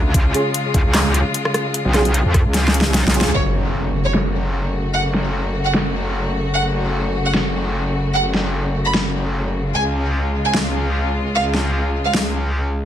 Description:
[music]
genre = heavy wobble dubstep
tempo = 150 BPM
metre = 4/4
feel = swing 55% on 16ths, half-time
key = F# harmonic minor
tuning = A4 = 440 Hz
[part]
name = rich chamber string section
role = sustained chords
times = 0.0-12.9 s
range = C#3 to F#4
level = -24 LUFS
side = left 2 dB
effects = sidechain pumping
[part]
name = metallic wobble bass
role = bass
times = 0.0-12.9 s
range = F#1 to E#2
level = -20 LUFS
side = equal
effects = distortion, chorus, overdrive
[part]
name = dubstep drum kit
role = drums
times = 0.1-12.2 s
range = handclaps, hi-hat, rim click, snare drum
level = -20 LUFS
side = equal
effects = overdrive, low-pass filter on snare, low-pass filter on hats
[part]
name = electronic kick drum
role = drums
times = 0.1-2.4 s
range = none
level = -16 LUFS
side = equal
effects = overdrive
[part]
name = dark brass ensemble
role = stabs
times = 0.3-3.3 s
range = C#4 to G#4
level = -24 LUFS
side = right 2 dB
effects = ping-pong delay
[part]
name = warm chamber violin section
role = melody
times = 3.3-12.1 s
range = C#5 to B5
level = -23 LUFS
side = right 2 dB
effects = ping-pong delay
[part]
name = impact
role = sound effects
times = 3.3-4.9 s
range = none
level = -24 LUFS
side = equal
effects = none
[sound]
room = light reverb, studio reverb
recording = none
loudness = -16 LUFS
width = side -10 dB against mid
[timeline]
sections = 0.0-3.3 A section; 3.3-12.9 B section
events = drop 0.0-3.3; drum fill 2.5-3.3; kick drops out 2.9-3.3; band accent 3.2; impact 3.3-4.9; filter sweep on drum 3.3-12.9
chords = 0.0 C#; 3.3 F#m; 9.7 C#

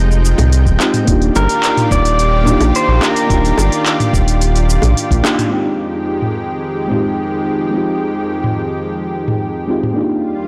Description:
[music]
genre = sunset chillout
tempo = 108 BPM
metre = 4/4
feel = straight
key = F dorian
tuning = A4 = 437 Hz
[part]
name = mellow FM electric piano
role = accompaniment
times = 0.0-10.5 s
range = Ab3 to G4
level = -21 LUFS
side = equal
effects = chorus, digital delay
[part]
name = lush unison pad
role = sustained chords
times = 0.0-10.5 s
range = Eb2 to G5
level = -23 LUFS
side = equal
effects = chorus
[part]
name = round analog bass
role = bass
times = 0.0-5.2 s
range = Eb1 to C2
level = -15 LUFS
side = equal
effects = none
[part]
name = smooth R&B drum kit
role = drums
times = 0.1-9.9 s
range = handclaps, hi-hat, shaker, toms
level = -22 LUFS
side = equal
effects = low-pass filter on hats, low-pass filter on perc, low-pass filter on snare, low-pass filter on toms
[part]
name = bongos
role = percussion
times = 0.4-5.4 s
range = none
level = -24 LUFS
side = equal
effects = none
[part]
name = electronic kick drum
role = drums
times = 0.7-5.2 s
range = none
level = -20 LUFS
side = equal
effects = none
[part]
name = pedal steel guitar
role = melody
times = 1.4-3.8 s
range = Bb4 to D5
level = -20 LUFS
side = equal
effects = digital delay
[sound]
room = light reverb, digital ambience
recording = blown-out, overdriven recording, overdrive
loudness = -15 LUFS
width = mono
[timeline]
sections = 0.0-5.5 A section; 5.5-10.5 B section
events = band accent 5.2; filter sweep on drum 5.5-10.5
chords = 0.0 Fm9; 1.1 Ebmaj9; 5.5 Fm9; 10.0 Ebmaj9

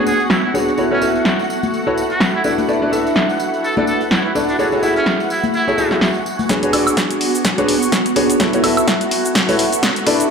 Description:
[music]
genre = piano house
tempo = 126 BPM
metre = 4/4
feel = swing 57% on 16ths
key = B dorian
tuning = A4 = 441 Hz
[part]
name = trumpet with metal mute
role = melody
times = 0.0-6.0 s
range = C#4 to A4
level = -22 LUFS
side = right 1 dB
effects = ping-pong delay
[part]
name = analog string pad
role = sustained chords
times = 0.0-10.3 s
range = F#4 to F#5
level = -25 LUFS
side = right 2 dB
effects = ensemble chorus, sidechain pumping
[part]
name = clear grand piano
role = riff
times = 0.0-10.2 s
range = D4 to E5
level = -18 LUFS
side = left 1 dB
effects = sidechain pumping, low-pass filter, ping-pong delay
[part]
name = granular cloud pad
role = texture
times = 0.0-10.3 s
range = B3 to C#6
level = -22 LUFS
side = right 2 dB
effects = built-in reverb, sidechain pumping
[part]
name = tambourine and congas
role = percussion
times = 0.1-6.5 s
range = none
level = -26 LUFS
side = left 6 dB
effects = none
[part]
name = punchy analog drum machine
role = drums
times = 0.2-10.3 s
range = cabasa, hi-hat, snare drum, woodblock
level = -18 LUFS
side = equal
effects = low-pass filter on perc, low-pass filter on snare, low-pass filter on hats, low-pass filter on room
[part]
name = electronic kick drum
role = drums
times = 6.5-9.9 s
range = none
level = -26 LUFS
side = equal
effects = high-pass filter on kick, high-pass filter on room
[sound]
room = wet plate reverb, RT60 1.5 s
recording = played on a big sound system in a bare room, large studio reverb, high-pass filter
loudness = -14 LUFS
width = side -6 dB against mid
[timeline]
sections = 0.0-6.5 A section; 6.5-10.3 B section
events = build-up 6.5-10.3; drum fill 6.5-10.3; filter sweep on analog synth pad 6.5-10.3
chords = 0.0 Bm69; 0.8 A69; 2.4 E7sus4; 4.6 F#m9; 6.5 Bm69; 8.4 A69

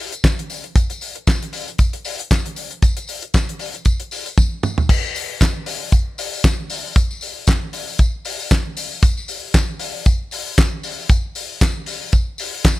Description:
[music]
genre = disco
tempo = 116 BPM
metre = 4/4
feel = swing 56% on 16ths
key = none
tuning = none
[part]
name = damped 70s drum kit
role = drums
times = 0.1-12.8 s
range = crash cymbal, handclaps, hi-hat, kick drum, snare drum, toms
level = -17 LUFS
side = equal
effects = none
[part]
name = tambourine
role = percussion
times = 0.1-12.8 s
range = none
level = -31 LUFS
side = left 4 dB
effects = none
[sound]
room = little or no reverb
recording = none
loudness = -17 LUFS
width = side -18 dB against mid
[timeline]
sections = 0.0-4.9 A section; 4.9-12.8 B section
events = drum fill 4.4-4.9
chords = none

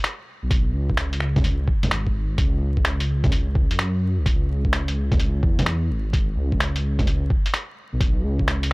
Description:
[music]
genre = future garage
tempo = 128 BPM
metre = 4/4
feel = swing 66% on 16ths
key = C# minor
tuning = A4 = 440 Hz
[part]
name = lo-fi sampler-style drum kit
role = drums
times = 0.0-8.7 s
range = bongos, finger snaps, hi-hat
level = -25 LUFS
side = equal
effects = none
[part]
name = dark detuned saw bass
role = bass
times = 0.4-8.7 s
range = G#1 to F#2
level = -23 LUFS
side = equal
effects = tube saturation
[part]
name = electronic kick drum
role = drums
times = 0.5-8.5 s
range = none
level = -22 LUFS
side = equal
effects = none
[sound]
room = little or no reverb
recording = dry, gritty hardware recording, vinyl crackle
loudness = -20 LUFS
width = side -26 dB against mid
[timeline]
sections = 0.0-8.7 A section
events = none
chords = none

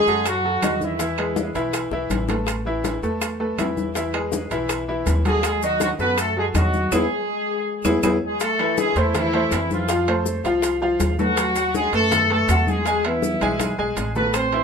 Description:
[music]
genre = latin, salsa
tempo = 162 BPM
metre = 4/4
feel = straight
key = A harmonic minor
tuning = A4 = 440 Hz
[part]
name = mellow horn section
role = melody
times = 0.0-1.5, 5.3-14.6 s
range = E3 to C5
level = -21 LUFS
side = equal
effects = none
[part]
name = bright baby grand piano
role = accompaniment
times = 0.1-14.6 s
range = D#3 to G#5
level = -24 LUFS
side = equal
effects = none
[part]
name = upright bass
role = bass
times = 0.1-14.6 s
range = A1 to F#2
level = -27 LUFS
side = equal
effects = none
[part]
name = bongos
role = percussion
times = 0.1-14.6 s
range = none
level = -31 LUFS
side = left 9 dB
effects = none
[part]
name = congas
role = percussion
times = 0.1-14.6 s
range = none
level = -29 LUFS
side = left 3 dB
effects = none
[part]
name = maracas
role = percussion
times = 0.1-14.5 s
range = none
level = -34 LUFS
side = left 6 dB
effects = none
[part]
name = claves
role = percussion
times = 0.3-8.1, 14.3-14.5 s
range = none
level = -32 LUFS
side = right 6 dB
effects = none
[part]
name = timbales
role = percussion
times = 0.3-14.6 s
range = none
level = -30 LUFS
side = right 5 dB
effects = none
[sound]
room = moderate studio ambience, RT60 0.5 s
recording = minimal, uncompressed stereo recording, lossy compression artefacts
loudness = -19 LUFS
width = side -6 dB against mid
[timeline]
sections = 0.0-8.4 A section; 8.4-14.6 A section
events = drum fill 1.9-2.5, 6.9-8.4, 13.2-14.3; band accent 6.9-8.4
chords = 0.0 F#m13; 1.0 E; 2.5 Asus2; 4.0 E; 5.4 B7/D#; 6.9 E; 8.4 Am; 9.9 F; 11.4 B7/D#; 12.9 E

